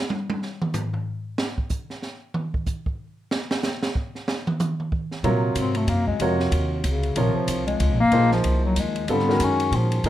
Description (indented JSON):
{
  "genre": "modal jazz",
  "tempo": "187 BPM",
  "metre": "3/4",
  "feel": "swing 61% on 8ths",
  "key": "Bb minor from 5.2 s",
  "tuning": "A4 = 440 Hz",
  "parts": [
    { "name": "open jazz drum kit", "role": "drums", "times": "0.1-10.1 s", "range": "hi-hat, kick drum, ride cymbal, snare drum, toms", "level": "-27 LUFS", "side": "right 1 dB", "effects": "none" },
    { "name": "warm baby grand piano", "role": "accompaniment", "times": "5.2-10.1 s", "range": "Bb2 to Db5", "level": "-24 LUFS", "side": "right 2 dB", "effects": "none" },
    { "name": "upright bass", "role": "bass", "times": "5.2-10.1 s", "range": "Ab1 to Bb2", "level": "-24 LUFS", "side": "equal", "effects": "none" },
    { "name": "mellow bass clarinet", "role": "second line", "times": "5.6-10.1 s", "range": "Db3 to Db4", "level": "-23 LUFS", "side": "left 3 dB", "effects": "none" }
  ],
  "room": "light reverb",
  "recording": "none",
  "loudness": "-21 LUFS",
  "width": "side -13 dB against mid",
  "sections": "0.0-5.2 A section; 5.2-10.1 A section",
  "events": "drum solo 0.0-5.2; bass clarinet solo 5.2-10.1",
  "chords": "0.0 N.C.; 5.2 Bbm11; 9.1 Abm11"
}